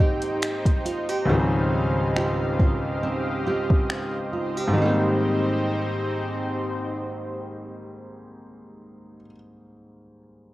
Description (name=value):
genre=contemporary R&B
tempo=69 BPM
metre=4/4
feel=swing 54% on 16ths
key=Ab major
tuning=A4 = 438 Hz
part: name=warm concert grand piano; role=accompaniment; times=0.0-10.5 s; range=Db2 to C4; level=-27 LUFS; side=left 1 dB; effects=none
part: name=lush unison pad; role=sustained chords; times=0.0-9.0 s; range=C4 to G5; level=-29 LUFS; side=left 1 dB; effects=chorus, sidechain pumping
part: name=nylon-string guitar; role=arpeggios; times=0.0-9.4 s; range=Db3 to G4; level=-28 LUFS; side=right 2 dB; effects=none
part: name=smooth R&B drum kit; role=drums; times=0.2-4.1 s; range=finger snaps, hi-hat, kick drum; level=-22 LUFS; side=equal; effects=none
room=light reverb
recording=worn, warbling old tape, cassette tape, warbly pitch drift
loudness=-22 LUFS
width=side -17 dB against mid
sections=0.0-4.8 A section; 4.8-8.2 B section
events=none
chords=0.0 Abmaj7; 1.3 Dbmaj9#11; 4.8 Abmaj7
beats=0.42 | 1.29 2.16 3.03 3.90 | 4.77 5.64 6.51 7.38